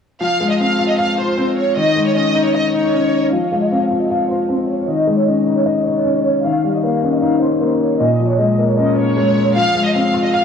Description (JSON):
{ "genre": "hip hop", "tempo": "154 BPM", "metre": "4/4", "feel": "half-time", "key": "F minor", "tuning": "A4 = 443 Hz", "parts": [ { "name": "warm studio violin section", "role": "melody", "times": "0.2-10.4 s", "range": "C5 to F5", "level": "-19 LUFS", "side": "right 1 dB", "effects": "low-pass filter, tape echo" }, { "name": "dark baby grand piano", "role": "accompaniment", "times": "0.2-10.4 s", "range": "Bb2 to F5", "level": "-15 LUFS", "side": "left 2 dB", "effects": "low-pass filter" } ], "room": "light reverb, studio ambience", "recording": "dry, gritty hardware recording, cassette tape", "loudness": "-14 LUFS", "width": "side -7 dB against mid", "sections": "0.2-3.3 A section; 3.3-10.4 B section", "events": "filter sweep 3.3-9.6", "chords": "0.2 Fm; 1.8 Dbsus2; 3.3 Fm; 4.9 Dbsus2; 6.4 Eb7; 8.0 Bbm7; 9.6 Fm" }